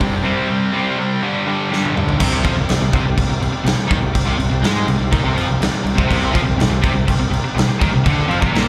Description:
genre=hard rock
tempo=123 BPM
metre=4/4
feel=straight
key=unclear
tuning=A4 = 439 Hz
part: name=overdriven tonewheel organ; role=sustained chords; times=0.0-8.7 s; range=G3 to D5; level=-32 LUFS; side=equal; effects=none
part: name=cranked stack guitar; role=riff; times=0.0-2.2, 6.1-8.7 s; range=G2 to C4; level=-26 LUFS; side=equal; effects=overdrive
part: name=crunchy overdriven guitar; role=riff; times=0.0-8.7 s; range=G2 to C4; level=-25 LUFS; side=equal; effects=slapback echo
part: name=sludgy distorted guitar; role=riff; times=0.0-8.7 s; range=G2 to C4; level=-24 LUFS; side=equal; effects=overdrive
part: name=growling fingered electric bass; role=bass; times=0.0-8.7 s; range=F1 to Ab2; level=-23 LUFS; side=equal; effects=overdrive
part: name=huge arena drum kit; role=drums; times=0.0-8.7 s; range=crash cymbal, kick drum, snare drum, toms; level=-22 LUFS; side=equal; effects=none
room=light reverb, studio reverb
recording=live gig heard through the venue's PA, club reverb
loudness=-17 LUFS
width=mono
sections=0.0-2.2 A section; 2.2-8.7 B section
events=drum fill 1.7-2.2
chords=0.0 C5; 1.2 G5; 2.2 Cm

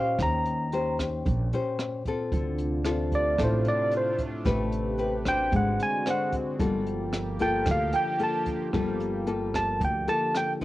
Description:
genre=bossa nova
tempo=112 BPM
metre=4/4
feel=straight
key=G minor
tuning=A4 = 438 Hz
part: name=bright tine electric piano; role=melody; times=0.0-10.5 s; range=C5 to Bb5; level=-26 LUFS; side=right 1 dB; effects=cassette tape
part: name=nylon-string guitar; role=accompaniment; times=0.0-10.6 s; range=A2 to C5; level=-29 LUFS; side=left 3 dB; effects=cassette tape
part: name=warm grand piano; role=accompaniment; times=0.0-0.2, 7.9-10.6 s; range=Eb5 to G5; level=-35 LUFS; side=right 7 dB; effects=cassette tape
part: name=upright bass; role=bass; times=0.2-10.1 s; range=G1 to Eb2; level=-31 LUFS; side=right 1 dB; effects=none
part: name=jazz brush drum kit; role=drums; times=0.2-10.6 s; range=hi-hat, kick drum, rim click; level=-33 LUFS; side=right 1 dB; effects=cassette tape
part: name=sweeping resonant pad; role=sustained chords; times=2.3-10.6 s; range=C3 to B4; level=-34 LUFS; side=right 2 dB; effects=chorus, cassette tape
room=light reverb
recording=home recording on cassette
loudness=-24 LUFS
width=side -16 dB against mid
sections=0.0-10.6 A section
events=tine electric piano solo 0.0-10.6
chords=0.2 Eb13; 2.3 Dm7; 4.5 Am9; 5.5 Ab7#11; 6.6 Gm9

